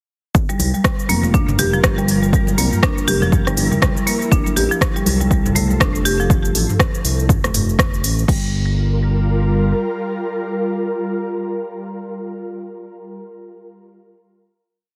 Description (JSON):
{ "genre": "afro house", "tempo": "121 BPM", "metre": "4/4", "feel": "swing 59% on 16ths", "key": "G dorian", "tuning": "A4 = 440 Hz", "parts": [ { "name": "ethereal airy pad", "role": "sustained chords", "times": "0.8-11.8 s", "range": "G3 to Bb4", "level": "-28 LUFS", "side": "equal", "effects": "ensemble chorus, built-in reverb, sidechain pumping" }, { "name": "smooth synth bass", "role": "bass", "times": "0.3-9.7 s", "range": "F1 to C2", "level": "-22 LUFS", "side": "equal", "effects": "sidechain pumping" }, { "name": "deep house drum kit", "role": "drums", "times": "0.3-8.4 s", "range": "crash cymbal, hi-hat, rim click, shaker, toms", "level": "-23 LUFS", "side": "equal", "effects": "none" }, { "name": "electronic kick drum", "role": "drums", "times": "0.3-8.4 s", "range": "none", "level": "-20 LUFS", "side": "equal", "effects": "none" }, { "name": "marimba with hard mallets", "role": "arpeggios", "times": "0.5-8.5 s", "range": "F3 to G4", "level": "-24 LUFS", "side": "equal", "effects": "sidechain pumping, tape echo" }, { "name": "congas", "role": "percussion", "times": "0.5-6.0 s", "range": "none", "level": "-28 LUFS", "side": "equal", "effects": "none" } ], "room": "light reverb, digital ambience", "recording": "heavily compressed radio sound, multiband compression", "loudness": "-17 LUFS", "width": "mono", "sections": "0.3-8.3 drop; 8.3-12.2 final chord", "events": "drop 0.3-8.3", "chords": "0.3 Gm7; 4.3 Fadd9; 8.3 Gm7", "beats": "| 0.35 0.84 1.34 1.84 | 2.33 2.83 3.32 3.82 | 4.32 4.81 5.31 5.80 | 6.30 6.79 7.29 7.79 | 8.28 8.78 9.27 9.77 | 10.27 10.76 11.26 11.75" }